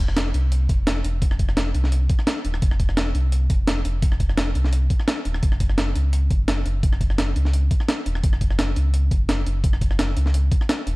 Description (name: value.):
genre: liquid drum and bass.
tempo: 171 BPM.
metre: 4/4.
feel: straight.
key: unclear.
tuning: A4 = 435 Hz.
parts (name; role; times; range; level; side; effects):
sub bass with octave; bass; 0.0-11.0 s; Eb1 to Db2; -21 LUFS; equal; none.
breakbeat sampler-style drum kit; drums; 0.1-10.9 s; hi-hat, rim click, snare drum; -26 LUFS; equal; none.
electronic kick drum; drums; 0.7-10.6 s; none; -20 LUFS; equal; none.
room: digital ambience.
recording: dark, warm production.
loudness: -19 LUFS.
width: side -22 dB against mid.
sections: 0.0-11.0 A section.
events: none.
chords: none.